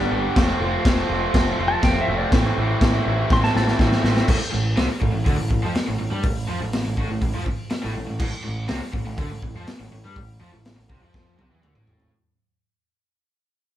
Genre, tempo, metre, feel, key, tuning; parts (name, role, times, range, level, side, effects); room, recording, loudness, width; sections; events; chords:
garage rock duo or trio; 122 BPM; 4/4; straight; A minor; A4 = 440 Hz
clean lap steel guitar; melody; 0.0-4.0 s; D5 to C6; -24 LUFS; left 1 dB
raw garage guitar; riff; 0.0-12.1 s; A2 to G4; -25 LUFS; right 1 dB; overdrive
growling picked electric bass; bass; 0.0-12.1 s; F1 to G2; -26 LUFS; equal; overdrive
raw garage drum kit; drums; 0.4-12.1 s; crash cymbal, hi-hat, kick drum, snare drum, toms; -22 LUFS; equal
moderate large studio reverb, RT60 1.0 s; band playing live in one room; -19 LUFS; side -12 dB against mid
0.0-4.3 A section; 4.3-12.1 B section
drum fill 3.3-4.3, 11.1-12.1; fade-out 4.3-12.1
0.4 F; 2.3 Am; 4.3 N.C.